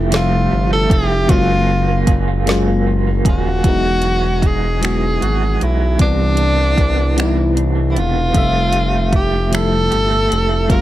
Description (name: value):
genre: slow six-eight R&B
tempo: 51 BPM (dotted quarters)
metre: 6/8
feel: straight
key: unclear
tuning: A4 = 444 Hz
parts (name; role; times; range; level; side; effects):
- electric guitar through a small old amp; second line; 0.0-10.8 s; C3 to G#4; -23 LUFS; right 4 dB; tremolo, plate reverb
- FM electric piano; accompaniment; 0.0-10.8 s; C3 to E5; -20 LUFS; left 3 dB; chorus
- smooth synth bass; bass; 0.0-10.8 s; D#1 to C2; -18 LUFS; equal; none
- smooth R&B drum kit; drums; 0.1-10.8 s; finger snaps, hi-hat, kick drum, snare drum; -17 LUFS; equal; none
- breathy tenor saxophone; melody; 0.2-10.8 s; D4 to A#4; -19 LUFS; equal; plate reverb
room: light reverb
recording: none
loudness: -13 LUFS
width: side -14 dB against mid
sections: 0.0-3.6 A section; 3.6-10.8 B section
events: none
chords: 0.0 Fmaj9; 1.3 F#maj9; 3.6 Emaj9; 6.0 Cmaj9; 8.3 Fmaj9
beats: 0.11 | 1.29 2.47 | 3.64 4.82 | 6.00 7.17 | 8.35 9.53 | 10.70